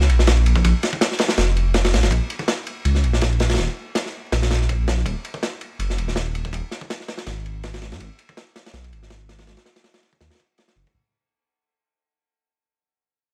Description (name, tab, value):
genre	drum and bass, jungle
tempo	163 BPM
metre	4/4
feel	swing 54% on 16ths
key	unclear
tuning	A4 = 440 Hz
part	dark detuned saw bass	bass	0.0-10.9 s	Eb1 to Ab2	-22 LUFS	equal	none
part	crunchy breakbeat drum kit	drums	0.0-10.9 s	kick drum, ride cymbal, snare drum	-26 LUFS	equal	high-pass filter on kick, high-pass filter on cymbals, high-pass filter on snare, high-pass filter on room
room	little or no reverb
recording	vinyl crackle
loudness	-21 LUFS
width	mono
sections	0.0-10.9 A section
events	fade-out 0.0-10.9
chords	none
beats	0.27 | 0.64 1.01 1.38 1.74 | 2.11 2.48 2.85 3.22 | 3.58 3.95 4.32 4.69 | 5.06 5.42 5.79 6.16 | 6.53 6.90 7.27 7.63 | 8.00 8.37 8.74 9.11 | 9.47 9.84 10.21 10.58